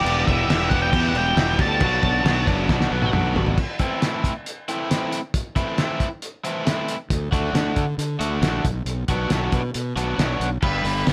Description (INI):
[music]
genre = indie rock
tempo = 136 BPM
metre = 4/4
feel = straight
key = A dorian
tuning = A4 = 440 Hz
[part]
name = octave-fuzz lead guitar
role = melody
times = 0.0-3.1, 10.6-11.0 s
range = B4 to A5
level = -27 LUFS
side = equal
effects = distortion
[part]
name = overdriven electric guitar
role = riff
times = 0.0-11.1 s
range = E2 to G4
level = -27 LUFS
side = equal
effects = none
[part]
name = fuzz fingered electric bass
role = bass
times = 0.0-3.6, 7.1-11.1 s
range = E1 to D3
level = -27 LUFS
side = equal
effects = overdrive
[part]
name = cloth-damped thuddy drum kit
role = drums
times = 0.1-11.1 s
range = crash cymbal, hi-hat, kick drum, snare drum, toms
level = -26 LUFS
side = equal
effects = none
[sound]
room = light reverb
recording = none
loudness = -22 LUFS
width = mono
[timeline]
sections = 0.0-3.6 A section; 3.6-10.6 B section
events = drum fill 2.7-3.6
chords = 0.0 Em; 1.8 Bm7; 3.6 Am; 7.1 D; 8.6 Bm